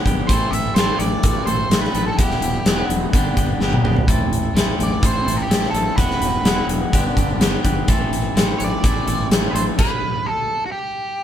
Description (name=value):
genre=quiet-loud alternative rock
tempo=126 BPM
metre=4/4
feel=straight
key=A dorian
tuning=A4 = 440 Hz
part: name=twangy electric guitar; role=arpeggios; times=0.0-9.8 s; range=E2 to A4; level=-25 LUFS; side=left 2 dB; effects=none
part: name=fuzz fingered electric bass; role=bass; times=0.1-9.7 s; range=E1 to A1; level=-24 LUFS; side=equal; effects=overdrive
part: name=huge arena drum kit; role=drums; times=0.1-9.9 s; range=crash cymbal, hi-hat, kick drum, snare drum, toms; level=-18 LUFS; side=equal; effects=none
part: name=octave-fuzz lead guitar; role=melody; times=0.3-11.2 s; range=F#4 to E5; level=-24 LUFS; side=right 2 dB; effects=distortion
room=moderate small room reverb, RT60 0.5 s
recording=band playing live in one room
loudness=-16 LUFS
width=side -10 dB against mid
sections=0.0-11.2 A section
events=drum fill 3.6-4.1; stop 9.8-11.2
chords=0.3 Am; 2.2 Emadd9; 3.1 G; 4.1 Am; 6.0 Emadd9; 6.9 G; 7.9 Am; 9.8 N.C.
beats=| 0.28 0.76 1.24 1.71 | 2.19 2.66 3.13 3.61 | 4.08 4.56 5.04 5.51 | 5.99 6.46 6.94 7.41 | 7.89 8.36 8.84 9.31 | 9.79 10.27 10.74 11.22